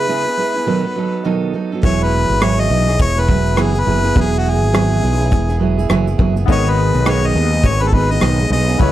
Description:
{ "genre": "acoustic pop", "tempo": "103 BPM", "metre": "4/4", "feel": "swing 60% on 16ths", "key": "E major", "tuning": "A4 = 440 Hz", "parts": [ { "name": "bright harmonica", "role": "melody", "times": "0.0-8.9 s", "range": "F#4 to D#5", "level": "-19 LUFS", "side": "left 2 dB", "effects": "slapback echo" }, { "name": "picked steel-string acoustic guitar", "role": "accompaniment", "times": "0.0-8.9 s", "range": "G#2 to A4", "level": "-19 LUFS", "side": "right 5 dB", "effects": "none" }, { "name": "fretless electric bass", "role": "bass", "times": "1.8-8.9 s", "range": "E1 to D#2", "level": "-17 LUFS", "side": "equal", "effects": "none" }, { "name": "modern studio drum kit", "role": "drums", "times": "1.8-8.9 s", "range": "kick drum, rim click, shaker", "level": "-17 LUFS", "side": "equal", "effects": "none" }, { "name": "clear concert grand piano", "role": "accompaniment", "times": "6.5-8.9 s", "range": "B3 to D#5", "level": "-25 LUFS", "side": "left 11 dB", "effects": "none" } ], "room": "light reverb", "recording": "lossy compression artefacts", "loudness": "-13 LUFS", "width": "side -13 dB against mid", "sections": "0.0-1.8 A section; 1.8-8.9 B section", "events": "none", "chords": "0.0 C#m7; 0.7 B7; 1.8 Eadd9; 6.5 G#m" }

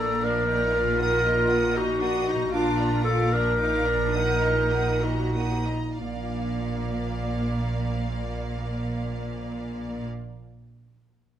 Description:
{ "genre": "classical, dramatic, fast romantic movement for symphony orchestra", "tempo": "60-79 BPM (dotted quarters)", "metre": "6/8", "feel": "straight", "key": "Bb major", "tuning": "A4 = 444 Hz", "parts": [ { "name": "bright symphonic violin section", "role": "melody", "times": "0.0-10.0 s", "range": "F5 to Eb6", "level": "-40 LUFS", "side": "right 1 dB", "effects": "none" }, { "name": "warm clarinet", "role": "second line", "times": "0.0-10.1 s", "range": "Bb3 to Bb4", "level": "-26 LUFS", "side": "equal", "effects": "none" }, { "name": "warm symphonic violin section", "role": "second line", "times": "0.0-10.0 s", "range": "Bb4 to Gb5", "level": "-35 LUFS", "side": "right 1 dB", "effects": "none" }, { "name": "clear symphonic viola section", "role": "accompaniment", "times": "0.0-10.1 s", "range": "Bb3 to Gb4", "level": "-32 LUFS", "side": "right 1 dB", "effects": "none" }, { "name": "concert harp", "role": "arpeggios", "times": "0.0-10.3 s", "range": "Bb2 to D5", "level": "-39 LUFS", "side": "left 8 dB", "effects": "none" }, { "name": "rich symphonic cello section", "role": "bass", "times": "0.0-10.1 s", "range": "Bb2", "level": "-31 LUFS", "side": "right 1 dB", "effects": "none" }, { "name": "rich symphonic double bass section", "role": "bass", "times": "0.0-10.1 s", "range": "Bb1", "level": "-31 LUFS", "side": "right 2 dB", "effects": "none" } ], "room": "moderate stone room reverb, RT60 1.2 s", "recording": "none", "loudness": "-23 LUFS", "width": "side -10 dB against mid", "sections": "0.0-6.0 A section; 6.0-9.9 B section", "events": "slowing down 1.8-6.0", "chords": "0.0 Bb; 1.0 Ebm/Bb; 2.5 Bb; 4.1 Ebm/Bb; 6.0 Bb" }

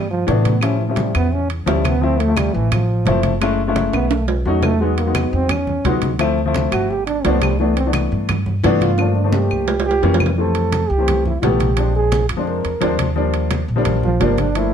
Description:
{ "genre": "Afro-Cuban jazz", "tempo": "172 BPM", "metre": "4/4", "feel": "straight", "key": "C major", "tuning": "A4 = 443 Hz", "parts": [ { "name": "mellow trombone", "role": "second line", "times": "0.0-14.7 s", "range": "C#3 to Bb4", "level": "-22 LUFS", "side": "right 4 dB", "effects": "none" }, { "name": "upright bass", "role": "bass", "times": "0.0-14.7 s", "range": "F#1 to A2", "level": "-20 LUFS", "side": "equal", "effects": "none" }, { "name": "congas", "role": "percussion", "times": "0.1-14.7 s", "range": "none", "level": "-26 LUFS", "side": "equal", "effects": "none" }, { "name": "warm baby grand piano", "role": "accompaniment", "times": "0.3-14.7 s", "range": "E3 to E4", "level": "-20 LUFS", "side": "left 4 dB", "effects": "none" }, { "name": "timbales", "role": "percussion", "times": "0.3-14.7 s", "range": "none", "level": "-25 LUFS", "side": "right 6 dB", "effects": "none" }, { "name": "claves", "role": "percussion", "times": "0.6-10.4 s", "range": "none", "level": "-29 LUFS", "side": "left 2 dB", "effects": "none" } ], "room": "light reverb", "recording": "dark, warm production", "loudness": "-15 LUFS", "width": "side -8 dB against mid", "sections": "0.0-10.4 A section; 10.4-14.7 A section", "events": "trombone solo 0.0-14.7; drum fill 3.9-4.8, 9.0-10.4", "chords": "0.0 Cmaj13 (rootless); 0.6 A7b13; 2.0 Dm9; 3.4 F#m9; 4.1 B9; 4.8 Emaj9; 6.2 Dm7; 6.9 G7; 7.6 Cmaj13; 9.0 Gm7; 9.7 C7b9; 10.4 Fmaj9; 11.8 Bb9; 13.2 Ebmaj9" }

